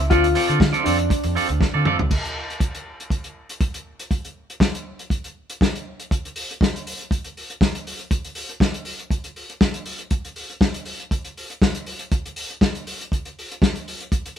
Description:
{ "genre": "disco", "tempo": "120 BPM", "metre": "4/4", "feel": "straight", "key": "D minor", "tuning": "A4 = 440 Hz", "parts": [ { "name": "dark baby grand piano", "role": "melody", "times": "0.0-1.8 s", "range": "D4 to F4", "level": "-22 LUFS", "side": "left 3 dB", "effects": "none" }, { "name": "clean electric guitar", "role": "accompaniment", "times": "0.0-2.0 s", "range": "C4 to D5", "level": "-23 LUFS", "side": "right 5 dB", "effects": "none" }, { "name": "overdriven fingered electric bass", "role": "bass", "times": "0.0-2.1 s", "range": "C#2 to D3", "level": "-22 LUFS", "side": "right 1 dB", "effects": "none" }, { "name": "warm soul drum kit", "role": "drums", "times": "0.1-14.4 s", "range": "crash cymbal, hi-hat, kick drum, snare drum, toms", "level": "-21 LUFS", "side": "equal", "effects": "none" } ], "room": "light reverb", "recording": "band playing live in one room", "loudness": "-20 LUFS", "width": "side -9 dB against mid", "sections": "0.0-2.1 A section; 2.1-14.4 B section", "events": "drum fill 1.6-2.1", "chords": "0.0 Dm7; 2.1 N.C." }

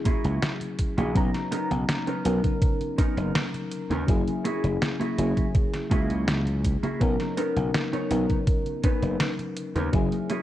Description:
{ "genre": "vaporwave", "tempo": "82 BPM", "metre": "4/4", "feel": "straight", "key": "B major", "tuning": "A4 = 438 Hz", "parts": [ { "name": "mellow FM electric piano", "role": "accompaniment", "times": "0.0-10.4 s", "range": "F#3 to A#5", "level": "-28 LUFS", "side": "left 2 dB", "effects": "wide subtle chorus, tape echo" }, { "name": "mellow electric guitar", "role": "riff", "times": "0.1-10.4 s", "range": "A#3 to C#5", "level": "-32 LUFS", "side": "right 1 dB", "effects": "lush chorus, tape echo" }, { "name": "detuned 8-bit digital drum machine", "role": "drums", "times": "0.1-10.4 s", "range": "congas, hi-hat, snare drum", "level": "-31 LUFS", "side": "equal", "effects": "vintage 12-bit sampler grit, studio reverb" }, { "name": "electronic kick drum", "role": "drums", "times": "0.1-10.1 s", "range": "none", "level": "-24 LUFS", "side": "equal", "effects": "vintage 12-bit sampler grit, studio reverb" }, { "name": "gritty slap bass", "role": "bass", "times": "0.2-10.1 s", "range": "F#1 to D#2", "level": "-27 LUFS", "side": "equal", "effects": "overdrive" } ], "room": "light reverb, digital ambience", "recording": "cassette tape", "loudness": "-23 LUFS", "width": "side -13 dB against mid", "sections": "0.0-10.4 A section", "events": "none", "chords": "0.0 F#9; 1.2 Bmaj9; 4.1 F#9; 7.0 Bmaj9" }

